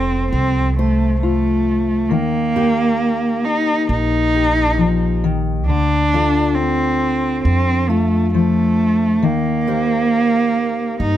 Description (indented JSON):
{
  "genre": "acoustic folk duo or small band",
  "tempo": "68 BPM",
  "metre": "4/4",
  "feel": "straight",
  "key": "unclear",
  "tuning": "A4 = 440 Hz",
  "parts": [
    { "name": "warm cello", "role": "melody", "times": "0.0-11.2 s", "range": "A3 to Eb4", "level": "-17 LUFS", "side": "right 1 dB", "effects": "plate reverb" },
    { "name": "fingerpicked steel-string acoustic guitar", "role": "accompaniment", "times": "0.0-11.2 s", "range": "D3 to C5", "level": "-22 LUFS", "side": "left 4 dB", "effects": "none" },
    { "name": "upright bass", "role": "bass", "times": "0.0-11.2 s", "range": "F1 to G2", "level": "-20 LUFS", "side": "right 1 dB", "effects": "none" }
  ],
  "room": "light reverb",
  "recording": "none",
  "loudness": "-15 LUFS",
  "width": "side -12 dB against mid",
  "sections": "0.0-11.2 A section",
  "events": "none",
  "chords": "0.0 F; 2.1 Eb; 5.7 Bbmaj7/D; 9.2 Cm7/Eb"
}